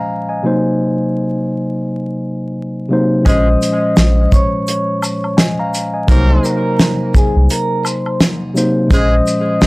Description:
hip hop, boom-bap hip-hop; 85 BPM; 4/4; swing 61% on 16ths; Bb minor; A4 = 439 Hz
mellow tine electric piano; accompaniment; 0.0-9.7 s; Bb2 to Bb5; -16 LUFS; equal; cassette tape, high-pass filter, low-pass filter
warm horn section; stabs; 3.2-9.1 s; F3 to Bb4; -24 LUFS; right 1 dB; high-pass filter, low-pass filter, analog delay
vibraphone with soft mallets; melody; 3.3-9.7 s; Ab4 to Eb6; -19 LUFS; left 1 dB; high-pass filter, low-pass filter
soft dub sub bass; bass; 3.3-9.7 s; Bb1 to C2; -13 LUFS; equal
warm soul drum kit; drums; 3.3-9.7 s; hi-hat, kick drum, shaker, snare drum; -13 LUFS; equal
tube shaker and woodblock; percussion; 3.3-9.7 s; -28 LUFS; left 1 dB
little or no reverb; vinyl crackle; -12 LUFS; side -23 dB against mid
0.0-3.3 A section; 3.3-9.7 B section
0.4 Cm7b5; 3.3 Bbm9; 6.1 Cm7b5; 8.9 Bbm9

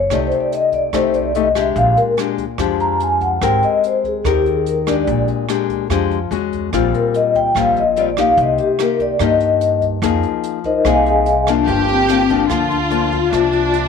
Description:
bossa nova; 145 BPM; 4/4; straight; C minor; A4 = 440 Hz
vibraphone with soft mallets; melody; 0.0-13.7 s; C4 to Bb5; -16 LUFS; left 2 dB
upright bass; bass; 0.0-13.9 s; G1 to G2; -23 LUFS; right 3 dB
nylon-string guitar; accompaniment; 0.1-13.9 s; G2 to Bb4; -19 LUFS; left 12 dB
jazz brush drum kit; drums; 0.1-13.8 s; hi-hat, kick drum, rim click; -30 LUFS; right 9 dB
warm symphonic violin section; second line; 11.7-13.9 s; D4 to G4; -19 LUFS; right 4 dB
light reverb, small room ambience; 1960s-style stereo with parts hard left and right; -14 LUFS; side -6 dB against mid
0.0-11.7 A section; 11.7-13.9 B section
vibraphone solo 0.0-11.7
0.1 Cm69; 1.8 Bb6; 3.4 Abmaj9; 5.1 Bb6; 6.3 E69; 6.7 Eb69/Bb; 8.4 Cm7; 10.0 Fm7; 11.7 Gm7; 13.3 C9sus4

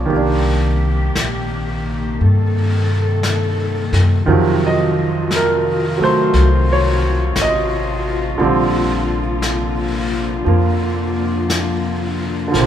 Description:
jazz ballad; 58 BPM; 4/4; swing 66% on 8ths; Bb major; A4 = 440 Hz
clear baby grand piano; accompaniment; 0.0-12.7 s; C3 to Eb5; -18 LUFS; right 3 dB
upright bass; bass; 0.0-12.7 s; A1 to C3; -18 LUFS; left 1 dB
muted symphonic cello section; sustained chords; 0.1-12.7 s; C3 to A4; -22 LUFS; left 4 dB
vintage brush drum kit; drums; 0.1-12.7 s; brushed snare drum, hi-hat, snare drum; -26 LUFS; left 2 dB
wet large studio reverb, RT60 1.1 s; band playing live in one room; -15 LUFS; side -10 dB against mid
0.0-12.7 A section
0.1 Cm7; 4.3 F7b9; 8.4 Bb69

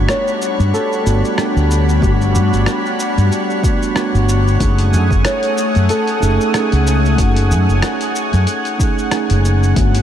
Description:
sunset chillout; 93 BPM; 4/4; swing 56% on 16ths; F# dorian; A4 = 440 Hz
mellow tine electric piano; accompaniment; 0.0-10.0 s; A3 to F#5; -20 LUFS; moving between left 5 dB and right 5 dB; auto-pan, tape echo
lush unison pad; sustained chords; 0.0-10.0 s; G3 to D#6; -21 LUFS; left 1 dB; chorus
mellow fretless electric bass; bass; 0.0-10.0 s; F#1 to G2; -14 LUFS; equal; tube saturation, analog chorus
drifting glass-harmonics texture; texture; 0.0-10.0 s; C#5 to C#6; -28 LUFS; right 1 dB; chorus, built-in reverb
flamenco guitar; melody; 0.1-9.4 s; F#4 to C#5; -23 LUFS; equal; diffuse ambient delay
dusty soul sampler-style drum kit; drums; 0.1-10.0 s; hi-hat, rim click, shaker; -25 LUFS; equal
electronic kick drum; drums; 2.0-9.9 s; -17 LUFS; equal
moderate huge ambient reverb, RT60 8.1 s; dreamy mix soaked in reverb; -13 LUFS; side -10 dB against mid
0.0-10.0 A section
0.0 Gmaj7; 4.6 F#m69

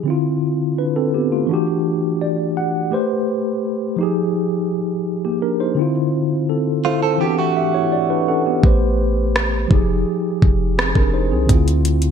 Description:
contemporary R&B; 84 BPM; 4/4; straight; A4 = 441 Hz
mellow tine electric piano; accompaniment; 0.0-12.1 s; D3 to F#5; -18 LUFS; left 1 dB; medium stereo tremolo
direct-recorded clean electric guitar; arpeggios; 6.8-8.4 s; A3 to A4; -21 LUFS; right 9 dB; wide subtle chorus, ping-pong delay
warm 808-style bass; bass; 8.6-12.1 s; F1 to D2; -19 LUFS; equal
smooth R&B drum kit; drums; 8.6-12.1 s; hi-hat, kick drum, rim click; -16 LUFS; equal; gated reverb
light reverb; bright 1980s-style digital production; -16 LUFS; side -7 dB against mid
0.0-12.1 A section
tine electric piano fill 1.8-2.9, 7.6-8.6
0.1 Dm9; 1.5 Em9; 2.9 Am9; 4.0 Fm9; 5.8 Dm9; 7.2 Em9; 8.6 Am9; 9.7 Fm9; 11.5 Dm9

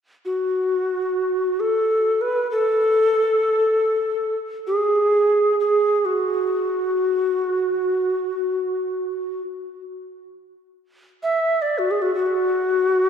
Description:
world meditative, free-time meditation music; free time; F# minor; A4 = 440 Hz
mellow reedy Native American-style cedar flute; solo; 0.3-13.1 s; F#4 to E5; -19 LUFS; equal; tape echo
wet plate reverb, RT60 3.1 s; dreamy mix soaked in reverb; -18 LUFS; side -8 dB against mid
0.0-13.1 A section

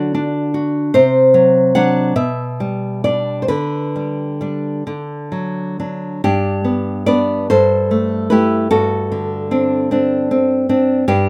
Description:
romantic piece for solo classical guitar; 42-53 BPM (dotted quarters); 6/8; rubato; G major; A4 = 440 Hz
nylon-string guitar; solo; 0.0-11.3 s; G2 to F#5; -17 LUFS; equal
moderate studio ambience, RT60 0.5 s; rough home demo mix; -17 LUFS; mono
0.0-6.2 A section; 6.2-11.3 B section
0.0 D; 0.9 D7/C; 2.2 G/B; 3.5 G/D; 4.9 D; 6.2 G; 7.5 Am7/G; 8.7 D7/G

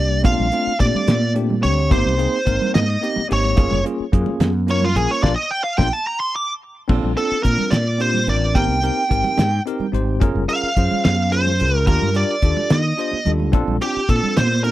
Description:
electric jazz fusion; 72 BPM (dotted quarters); 6/8; straight; A4 = 438 Hz
bluesy overdriven lead guitar; melody; 0.0-14.7 s; F4 to D6; -21 LUFS; right 1 dB; distortion
bell-like tine electric piano; accompaniment; 0.0-14.7 s; G3 to C5; -24 LUFS; left 2 dB; medium stereo tremolo
mellow fretless electric bass; bass; 0.0-14.7 s; Gb1 to Eb3; -20 LUFS; equal
damped 70s drum kit; drums; 0.2-14.7 s; crash cymbal, hi-hat, kick drum, snare drum; -18 LUFS; equal
congas; percussion; 0.2-14.5 s; -26 LUFS; right 6 dB
little or no reverb; dry, close 1970s-style studio recording; -16 LUFS; side -15 dB against mid
0.0-6.9 A section; 6.9-14.7 B section
lead electric guitar solo 0.0-6.9; drum fill 5.2-6.9, 13.1-13.5; band accent 5.2-6.9
0.2 Bbmaj9; 1.9 Abmaj9; 3.6 Gbmaj9; 5.2 Bb; 6.9 Bbmaj9; 8.6 Abmaj9; 10.2 Gbmaj9; 11.9 Ebmaj9; 13.5 Bbmaj9

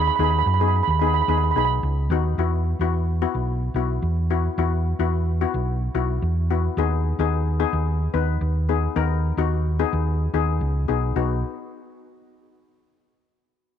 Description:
calypso; 109 BPM; 4/4; straight; A4 = 440 Hz
steel pan; melody; 0.0-1.7 s; B5; -22 LUFS; right 10 dB
steel pan; accompaniment; 0.0-11.4 s; B3 to B4; -26 LUFS; left 12 dB
hollow-body short-scale fingered electric bass; bass; 0.0-11.4 s; B1 to F#2; -22 LUFS; right 1 dB
light reverb, small room ambience; 1960s-style stereo with parts hard left and right; -20 LUFS; side -8 dB against mid
0.0-2.4 A section; 2.4-11.2 B section; 11.2-13.4 C section
0.0 G#m7/D#; 2.4 Esus2; 6.8 G#m/D#; 11.2 B

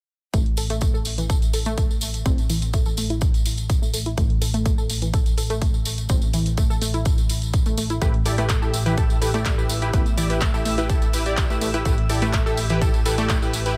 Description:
progressive house; 125 BPM; 4/4; straight; A4 = 440 Hz
analog pluck; arpeggios; 0.3-13.4 s; E3 to A4; -31 LUFS; equal; chorus, sidechain pumping, delay
plucky analog bass; bass; 0.3-13.8 s; A1; -28 LUFS; equal; sidechain pumping
big-room dance drum kit; drums; 0.3-13.8 s; handclaps, hi-hat; -33 LUFS; equal; studio reverb
electronic kick drum; drums; 0.3-13.4 s; -23 LUFS; equal; studio reverb
tambourine; percussion; 0.3-13.8 s; -36 LUFS; equal
supersaw stab; stabs; 8.0-13.7 s; E4 to E5; -29 LUFS; equal; sidechain pumping, delay
twinkling granular texture; texture; 8.7-13.8 s; E5 to E6; -39 LUFS; equal; built-in reverb, sidechain pumping
digital ambience; -22 LUFS; mono
0.3-13.8 A section
filter sweep on synth pluck 0.3-13.8
0.3 N.C.; 8.0 Em/A

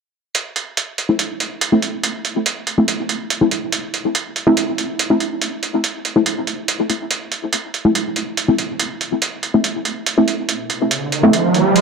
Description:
deep dubstep; 142 BPM; 4/4; half-time; A minor; A4 = 440 Hz
electronic hi-hat; drums; 0.3-11.8 s; -21 LUFS; right 4 dB; overdrive
filtered dub chord stab; stabs; 1.1-11.3 s; A3 to E4; -18 LUFS; left 1 dB; chorus, dub echo
riser; sound effects; 10.9-11.8 s; -16 LUFS; right 3 dB
wet plate reverb, RT60 2.2 s; echo-heavy mix; -16 LUFS; side -5 dB against mid
0.3-11.8 A section
riser 10.9-11.8
0.3 Am

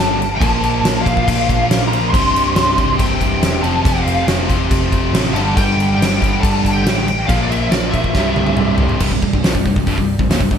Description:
hard rock; 140 BPM; 4/4; straight; A4 = 441 Hz
lead guitar through a small cranked amp; melody; 0.0-8.7 s; D5 to C6; -20 LUFS; equal; overdrive, ensemble chorus, digital delay
analog string pad; sustained chords; 0.0-10.6 s; F3 to D5; -30 LUFS; right 1 dB
cranked stack guitar; riff; 0.0-10.6 s; C2 to Bb3; -22 LUFS; left 9 dB; overdrive
cranked stack guitar; riff; 0.0-10.6 s; C2 to Bb3; -24 LUFS; right 10 dB; overdrive, lush chorus
scooped high-gain guitar; riff; 0.0-10.6 s; C2 to Bb3; -23 LUFS; right 2 dB; distortion
vintage muted picked electric bass; bass; 0.0-10.6 s; C1 to Bb1; -21 LUFS; equal
huge arena drum kit; drums; 0.2-10.6 s; crash cymbal, hi-hat, kick drum, snare drum, toms; -18 LUFS; equal
moderate plate reverb, RT60 1.0 s, studio reverb; bright 1980s-style digital production; -13 LUFS; side -8 dB against mid
0.0-9.0 A section; 9.0-10.6 B section
drum fill 8.1-9.0
0.4 Bb5; 2.1 C; 3.6 F; 5.4 G5; 7.3 Bb5; 8.1 C; 9.0 C5

